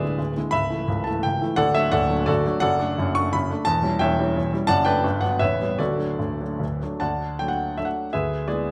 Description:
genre	classical, romantic triple-time dance for piano with dotted rhythms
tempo	139-187 BPM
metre	3/4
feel	rubato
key	D major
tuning	A4 = 440 Hz
part	clear grand piano	solo	0.0-8.7 s	A0 to C#6	-23 LUFS	equal	none
room	moderate recital hall reverb, RT60 1.6 s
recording	close, detailed microphones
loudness	-23 LUFS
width	mono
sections	0.0-7.0 A section; 7.0-8.7 A section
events	none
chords	0.0 E7/D; 0.5 A/C#; 1.6 D; 2.6 D/F#; 3.7 C#dim/E; 4.7 D/F#; 5.0 Gmaj7; 5.4 A9; 5.8 D; 8.1 E7/D

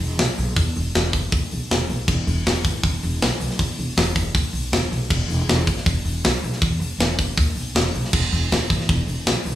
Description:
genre	heavy metal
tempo	158 BPM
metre	4/4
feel	straight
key	unclear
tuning	A4 = 438 Hz
part	upright bass	bass	0.0-9.6 s	E1 to E2	-23 LUFS	equal	none
part	tight metal drum kit	drums	0.0-9.5 s	crash cymbal, hi-hat, kick drum, snare drum	-21 LUFS	equal	none
room	little or no reverb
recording	rough home demo mix, studio reverb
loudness	-19 LUFS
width	side -13 dB against mid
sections	0.0-9.6 A section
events	none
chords	none

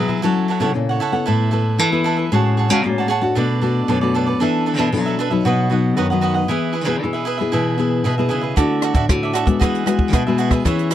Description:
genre	samba and choro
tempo	115 BPM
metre	4/4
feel	straight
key	unclear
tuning	A4 = 440 Hz
part	cavaquinho	accompaniment	0.0-10.9 s	D4 to A5	-22 LUFS	right 6 dB	none
part	nylon-string guitar	accompaniment	0.0-10.9 s	F#2 to A4	-20 LUFS	left 4 dB	none
part	nylon-string guitar	bass	0.0-10.9 s	A2 to F#3	-20 LUFS	equal	none
part	compact cocktail drum kit	drums	0.1-0.2, 8.6-10.9 s	hi-hat, kick drum, rim click, toms	-19 LUFS	right 1 dB	none
room	little or no reverb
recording	dry, close 1970s-style studio recording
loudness	-16 LUFS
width	side -11 dB against mid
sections	0.2-10.9 A section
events	drum fill 0.0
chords	0.2 F#m7; 1.3 Asus2; 2.3 F#madd9/A; 3.4 Bm7; 4.4 E7sus4; 5.4 B; 6.5 E; 8.6 Dadd9; 9.6 Eadd9

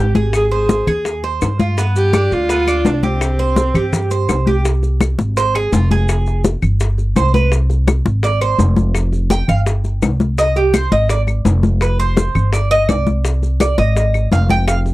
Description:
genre	latin, Cuban son and guajira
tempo	167 BPM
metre	4/4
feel	straight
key	C minor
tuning	A4 = 440 Hz
part	warm viola	melody	0.0-4.3 s	C4 to Ab4	-19 LUFS	equal	tape echo
part	Cuban tres	arpeggios	0.0-14.8 s	B3 to G5	-19 LUFS	right 3 dB	none
part	upright bass	bass	0.0-14.9 s	F1 to G2	-16 LUFS	equal	none
part	congas	percussion	0.1-14.9 s	none	-18 LUFS	left 2 dB	none
part	maracas	percussion	0.2-14.9 s	none	-34 LUFS	left 4 dB	none
part	bongos	percussion	0.3-14.9 s	none	-24 LUFS	left 4 dB	none
part	claves	percussion	0.3-14.9 s	none	-26 LUFS	left 7 dB	none
room	little or no reverb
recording	dry, close 1970s-style studio recording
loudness	-13 LUFS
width	side -18 dB against mid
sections	0.0-4.6 A section; 4.6-14.9 B section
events	Cuban tres solo 4.6-14.9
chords	0.3 Ab; 1.8 G7; 3.2 C5; 4.6 Ab; 5.4 Fm; 6.8 Gadd11; 7.5 Ab; 8.2 Fm6; 9.0 Fsus2; 9.7 Gsus4; 10.4 Abmaj7; 11.1 Fm6; 11.8 F5; 12.5 Cmadd9/G; 13.2 Ab; 14.0 Ab5

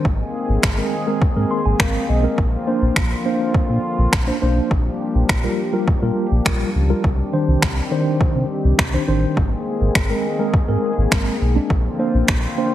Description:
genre	dance-pop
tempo	103 BPM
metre	4/4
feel	straight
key	unclear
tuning	A4 = 440 Hz
part	mellow tine electric piano	accompaniment	0.0-12.7 s	Eb3 to C6	-22 LUFS	right 1 dB	medium stereo tremolo, sidechain pumping
part	warm analog pad	sustained chords	0.0-12.7 s	D3 to Ab4	-24 LUFS	left 2 dB	chorus, sidechain pumping
part	sub bass with octave	bass	0.1-12.5 s	Ab1 to C3	-19 LUFS	equal	sidechain pumping
part	smooth R&B drum kit	drums	0.1-12.4 s	finger snaps, kick drum	-19 LUFS	equal	overdrive
room	light reverb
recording	heavily compressed radio sound, multiband compression, lossy compression artefacts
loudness	-16 LUFS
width	side -12 dB against mid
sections	0.0-12.7 A section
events	tine electric piano fill 1.2-2.4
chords	0.1 Abadd9; 2.4 Bbadd9; 4.7 Gm7/Bb; 7.0 Cmadd9; 9.4 Abadd9; 11.7 Bbadd9

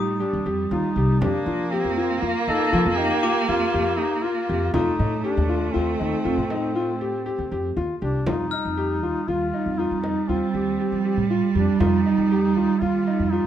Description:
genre	contemporary instrumental, chamber music in an uneven meter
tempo	119 BPM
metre	7/4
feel	straight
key	F mixolydian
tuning	A4 = 440 Hz
part	warm duduk	melody	0.0-13.5 s	Bb3 to A4	-28 LUFS	left 1 dB	none
part	warm cello	second line	0.0-13.5 s	G3 to Bb3	-24 LUFS	right 5 dB	none
part	clear baby grand piano	arpeggios	0.0-13.5 s	Eb4 to G4	-26 LUFS	left 3 dB	none
part	upright bass	bass	0.0-13.4 s	C2 to F3	-27 LUFS	equal	none
part	glockenspiel with brass mallets	texture	0.0-9.4 s	D6 to F6	-35 LUFS	left 7 dB	none
part	frame drum	percussion	0.2-12.9 s	none	-31 LUFS	right 1 dB	none
room	light reverb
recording	none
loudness	-20 LUFS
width	side -10 dB against mid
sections	0.0-8.3 A section; 8.3-13.5 B section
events	none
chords	0.0 F9; 1.2 Gm/F; 4.7 F9; 8.3 F7(no3)

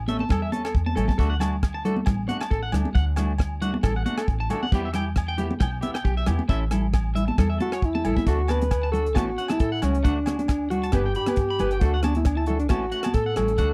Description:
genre	highlife guitar band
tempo	136 BPM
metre	4/4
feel	swing 54% on 16ths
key	D major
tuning	A4 = 440 Hz
part	upright bass	bass	0.0-13.7 s	G1 to A2	-29 LUFS	equal	none
part	clean electric guitar	accompaniment	0.1-13.7 s	E3 to A4	-36 LUFS	equal	none
part	electric guitar at the edge of break-up	arpeggios	0.1-13.7 s	G4 to B5	-34 LUFS	equal	slapback echo
part	tight funk drum kit	drums	0.1-13.7 s	hi-hat, kick drum, rim click	-26 LUFS	equal	none
part	congas	percussion	0.1-13.5 s	none	-31 LUFS	equal	none
part	agogo bells	percussion	0.3-13.5 s	none	-40 LUFS	equal	none
part	dark alto saxophone	melody	7.6-13.7 s	C#4 to B4	-28 LUFS	equal	none
room	studio reverb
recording	dry, close 1970s-style studio recording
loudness	-24 LUFS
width	mono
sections	0.0-8.3 A section; 8.3-13.7 B section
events	none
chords	0.0 A; 1.2 D; 4.7 Em; 6.5 A5; 8.3 D; 9.2 A6; 10.0 D; 10.9 G; 11.8 D; 12.7 A6

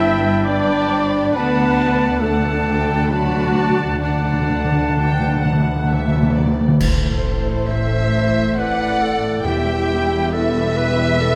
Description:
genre	cinematic, emotional film score for orchestra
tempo	67 BPM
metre	3/4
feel	uneven beats, rubato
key	unclear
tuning	A4 = 441 Hz
part	muted symphonic violin section	melody	0.0-11.4 s	C5 to B5	-28 LUFS	equal	none
part	bright concert flute	second line	0.0-6.4 s	A5 to B5	-29 LUFS	equal	none
part	clear clarinet	second line	0.0-11.4 s	D4 to C5	-28 LUFS	equal	none
part	muted symphonic violin section	second line	0.0-11.4 s	A4 to A5	-32 LUFS	equal	none
part	warm oboe	second line	0.0-6.4 s	F#5 to G5	-30 LUFS	equal	none
part	muted symphonic viola section	accompaniment	0.0-11.4 s	E3 to E5	-28 LUFS	equal	none
part	warm French horn section	sustained chords	0.0-11.4 s	D3 to E4	-26 LUFS	equal	none
part	muted symphonic cello section	bass	0.0-11.4 s	D2 to A2	-26 LUFS	equal	none
part	muted symphonic double bass section	bass	0.0-11.4 s	E1 to D2	-27 LUFS	equal	none
part	timpani	percussion	1.3-10.7 s	E2 to D3	-23 LUFS	equal	none
part	clash cymbals and concert bass drum	percussion	6.8-8.5 s	none	-26 LUFS	equal	none
room	moderate scoring stage reverb, RT60 1.6 s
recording	none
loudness	-18 LUFS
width	mono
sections	0.0-6.8 A section; 6.8-11.4 B section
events	timpani fill 1.3-6.8; band accent 6.8-7.7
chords	0.0 G; 1.3 D; 6.8 Am; 9.4 Em

